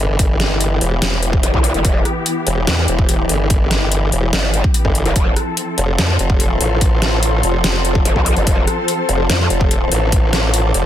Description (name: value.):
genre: heavy wobble dubstep.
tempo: 145 BPM.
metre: 4/4.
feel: half-time.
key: E phrygian.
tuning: A4 = 440 Hz.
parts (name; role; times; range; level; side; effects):
warm studio string section; sustained chords; 0.0-10.9 s; E3 to A4; -24 LUFS; left 2 dB; sidechain pumping, low-pass filter.
formant-sweep wobble bass; bass; 0.0-10.9 s; E1 to A1; -17 LUFS; equal; chorus, overdrive.
ethereal airy pad; texture; 0.0-10.9 s; E4 to D6; -24 LUFS; left 1 dB; ensemble chorus, built-in reverb, sidechain pumping.
dubstep drum kit; drums; 0.2-10.8 s; hi-hat, rim click, snare drum; -20 LUFS; left 1 dB; overdrive.
electronic kick drum; drums; 0.2-10.2 s; none; -16 LUFS; equal; overdrive.
growl bass; bass; 1.4-9.5 s; E1 to F2; -16 LUFS; equal; chorus, overdrive.
room: little or no reverb.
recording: dense, heavily limited modern master.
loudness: -13 LUFS.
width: side -11 dB against mid.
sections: 0.0-10.9 A section.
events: none.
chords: 0.0 Em; 5.2 F.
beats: | 0.19 0.61 1.02 1.43 | 1.85 2.26 2.67 3.09 | 3.50 3.92 4.33 4.74 | 5.16 5.57 5.99 6.40 | 6.81 7.23 7.64 8.05 | 8.47 8.88 9.30 9.71 | 10.12 10.54.